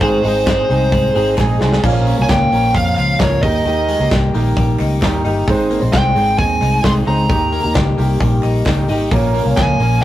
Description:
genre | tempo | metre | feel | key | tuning
jangly indie pop | 132 BPM | 4/4 | straight | Bb dorian | A4 = 441 Hz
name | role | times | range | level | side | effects
fuzz lead guitar | melody | 0.0-10.0 s | C5 to C6 | -17 LUFS | right 1 dB | distortion
fingerpicked steel-string acoustic guitar | accompaniment | 0.0-10.0 s | Ab2 to C5 | -20 LUFS | right 2 dB | none
twelve-string electric guitar | arpeggios | 0.0-10.0 s | Ab2 to Ab4 | -22 LUFS | left 4 dB | none
vintage muted fingered electric bass | bass | 0.0-10.0 s | G1 to F2 | -18 LUFS | equal | none
modern studio drum kit | drums | 0.0-9.9 s | crash cymbal, hi-hat, kick drum, snare drum | -19 LUFS | equal | none
group handclap | percussion | 0.5-9.7 s | none | -36 LUFS | right 3 dB | none
room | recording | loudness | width
light reverb | rough rehearsal-room recording | -12 LUFS | side -13 dB against mid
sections
0.0-1.8 A section; 1.8-10.0 B section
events
drum fill 1.4-1.8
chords
0.0 Ab; 1.8 Bbm; 3.4 Eb; 5.5 Ab; 7.3 Eb; 9.1 Bbm

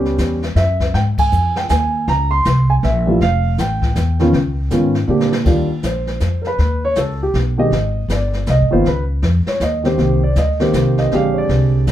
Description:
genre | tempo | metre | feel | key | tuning
jazz piano trio | 159 BPM | 3/4 | swing 63% on 8ths | Eb major from 5.5 s | A4 = 438 Hz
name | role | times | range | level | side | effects
dark concert grand piano | melody | 0.0-11.9 s | D3 to C6 | -17 LUFS | right 1 dB | none
upright bass | bass | 0.0-11.9 s | F1 to Bb2 | -17 LUFS | equal | none
jazz brush drum kit | drums | 0.1-11.9 s | brushed snare drum, crash cymbal, hi-hat, kick drum, snare drum | -24 LUFS | left 2 dB | none
room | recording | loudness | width
moderate club reverb, RT60 0.6 s | heard from further back in the room | -14 LUFS | side -12 dB against mid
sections
0.0-5.5 A section; 5.5-11.9 B section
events
band accent 1.1; drum fill 5.1-5.5; grand piano solo 5.5-11.9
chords
0.0 C#m7b5; 0.9 Ab5; 2.1 Bbdim; 3.2 Fmaj9; 4.3 Db9; 5.1 Bbadd9; 5.5 Ebsus2; 6.6 Ebaug7; 7.7 Abmaj7; 8.9 Dbadd9; 10.0 Cm7; 11.1 Bb13

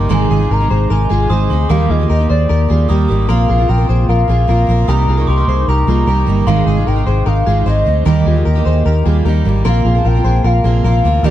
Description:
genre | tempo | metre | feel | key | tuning
indie pop | 151 BPM | 4/4 | straight | unclear | A4 = 439 Hz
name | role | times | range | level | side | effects
glockenspiel with rubber mallets | second line | 0.0-11.3 s | G5 to Eb6 | -27 LUFS | right 6 dB | none
picked steel-string acoustic guitar | accompaniment | 0.0-11.3 s | Ab2 to Bb4 | -19 LUFS | right 6 dB | none
hollow soft pad | sustained chords | 0.0-11.3 s | C3 to G4 | -24 LUFS | equal | chorus
direct-recorded clean electric guitar | arpeggios | 0.0-11.3 s | Eb4 to C5 | -22 LUFS | left 3 dB | wide subtle chorus
vintage muted fingered electric bass | bass | 0.0-11.3 s | G1 to Eb2 | -13 LUFS | equal | none
hollow clarinet-like synth lead | melody | 0.1-11.3 s | D5 to C6 | -20 LUFS | equal | chorus
room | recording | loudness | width
light reverb | dark, warm production | -11 LUFS | side -12 dB against mid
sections
0.0-9.7 A section; 9.7-11.3 A section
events
none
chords
0.1 Ab; 1.7 Eb; 3.3 Bbsus2; 4.9 Cm7; 6.5 Ab; 8.1 Eb; 9.7 Bbsus2

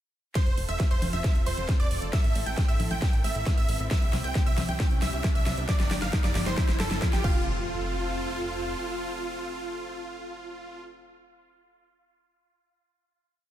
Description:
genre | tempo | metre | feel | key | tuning
uplifting trance | 135 BPM | 4/4 | straight | F major | A4 = 440 Hz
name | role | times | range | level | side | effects
supersaw chords | melody | 0.4-10.8 s | F4 to G5 | -34 LUFS | right 1 dB | sidechain pumping, dub echo
wide unison pluck | second line | 0.4-10.8 s | F5 to G6 | -40 LUFS | right 2 dB | sidechain pumping, dub echo
supersaw pad | sustained chords | 0.4-10.8 s | Bb3 to A4 | -38 LUFS | equal | sidechain pumping
big-room dance drum kit | drums | 0.4-7.3 s | congas, crash cymbal, hi-hat, snare drum | -33 LUFS | left 1 dB | none
electronic kick drum | drums | 0.4-7.3 s | none | -25 LUFS | equal | none
riser and impact | sound effects | 2.1-10.8 s | none | -39 LUFS | equal | none
plucky analog bass | bass | 0.5-8.8 s | F1 to C2 | -32 LUFS | equal | sidechain pumping
room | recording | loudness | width
little or no reverb | none | -24 LUFS | side -12 dB against mid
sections
0.4-7.5 build; 7.5-11.0 final hit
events
build-up 0.4-7.5; drum fill 0.4-7.5; riser 2.1-7.5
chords
0.4 F; 2.1 Am; 3.9 C; 5.7 Gm; 7.2 F

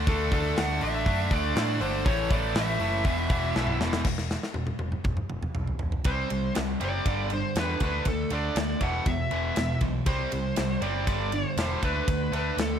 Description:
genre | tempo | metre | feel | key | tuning
hard rock | 120 BPM | 4/4 | straight | E minor | A4 = 443 Hz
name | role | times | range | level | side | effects
high-gain distorted guitar | riff | 0.0-12.8 s | E2 to D4 | -29 LUFS | equal | distortion
overdriven picked electric bass | bass | 0.0-12.7 s | E1 to A2 | -31 LUFS | equal | none
smooth overdriven lead guitar | melody | 0.1-12.8 s | A4 to F#5 | -31 LUFS | equal | slapback echo
tight metal drum kit | drums | 0.1-12.7 s | crash cymbal, hi-hat, kick drum, ride cymbal, snare drum, toms | -30 LUFS | equal | none
room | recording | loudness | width
studio ambience | none | -25 LUFS | side -8 dB against mid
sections
0.0-4.1 A section; 4.1-6.1 B section; 6.1-12.8 C section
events
drum fill 3.6-4.1, 4.1-6.1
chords
0.0 D5; 2.1 A5; 3.1 E5; 6.1 C5; 7.1 G5; 7.8 D5; 8.8 E5; 10.1 C5; 11.1 G5; 11.8 D5

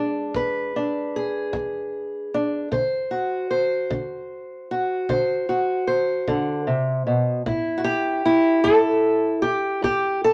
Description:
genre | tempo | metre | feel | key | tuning
acoustic country blues, solo or duo | 51 BPM (dotted quarters) | 12/8 | straight | unclear | A4 = 440 Hz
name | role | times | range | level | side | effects
fingerpicked old ladder-braced acoustic guitar | melody | 0.0-10.3 s | E2 to C5 | -23 LUFS | equal | none
kick drum | drums | 0.3-10.0 s | none | -42 LUFS | equal | none
room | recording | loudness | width
light reverb | none | -23 LUFS | mono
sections
0.0-10.3 A section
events
none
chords
0.0 E7; 2.7 D7; 7.5 A7(no3)

